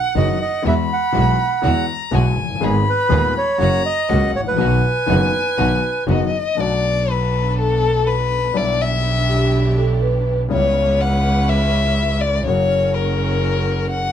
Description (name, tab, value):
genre	tango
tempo	122 BPM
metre	4/4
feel	rubato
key	B major, B minor from 6.6 s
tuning	A4 = 440 Hz
part	bandoneon	melody	0.0-6.0 s	B4 to F#5	-20 LUFS	right 5 dB	none
part	rich violin	second line	0.0-14.1 s	A4 to B5	-21 LUFS	left 5 dB	none
part	clear concert grand piano	accompaniment	0.1-14.1 s	D#1 to G#4	-24 LUFS	left 4 dB	none
part	clear symphonic string section	stabs	0.2-14.1 s	G#3 to B4	-29 LUFS	right 1 dB	none
part	clear double bass	bass	0.2-14.1 s	F#1 to E2	-19 LUFS	right 1 dB	none
part	vibraphone with soft mallets	second line	9.3-10.4 s	G4 to B4	-22 LUFS	right 3 dB	none
room	light reverb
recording	dark, warm production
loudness	-15 LUFS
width	side -9 dB against mid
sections	0.0-6.6 A section; 6.6-14.1 B section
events	violin solo 6.6-14.1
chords	0.0 B; 0.6 Eadd9; 2.6 G#m; 3.6 F#; 4.6 B; 6.6 Bm7; 8.6 Em7/B; 10.5 C#m7b5; 12.5 F#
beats	0.15 | 0.65 1.14 1.63 2.12 | 2.62 3.11 3.60 4.10 | 4.59 5.08 5.58 6.08 | 6.57 7.07 7.56 8.06 | 8.55 9.04 9.54 10.03 | 10.52 11.01 11.49 11.98 | 12.47 12.96 13.45 13.95